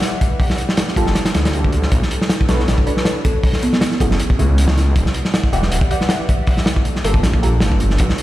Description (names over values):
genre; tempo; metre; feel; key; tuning
drum and bass, jungle; 158 BPM; 4/4; swing 53% on 16ths; unclear; A4 = 438 Hz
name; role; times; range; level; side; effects
airy breathy pad; sustained chords; 0.0-8.2 s; A3 to F#5; -26 LUFS; equal; chorus
crunchy breakbeat drum kit; drums; 0.0-8.2 s; hi-hat, kick drum, snare drum; -16 LUFS; equal; none
band-passed chord stab; stabs; 1.0-7.5 s; A3 to F#5; -27 LUFS; equal; phaser, analog chorus, dub echo
detuned saw bass; bass; 1.0-8.1 s; D1 to D2; -17 LUFS; equal; none
kalimba; melody; 3.2-4.0 s; B3 to A4; -24 LUFS; right 1 dB; dub echo
room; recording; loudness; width
light reverb, small room ambience; played on a big sound system in a bare room, stone room reverb; -14 LUFS; side -15 dB against mid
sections
0.0-8.2 A section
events
none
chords
0.4 Gm9; 1.9 Bm9; 3.4 F#m9; 5.0 Em9; 6.5 Gm9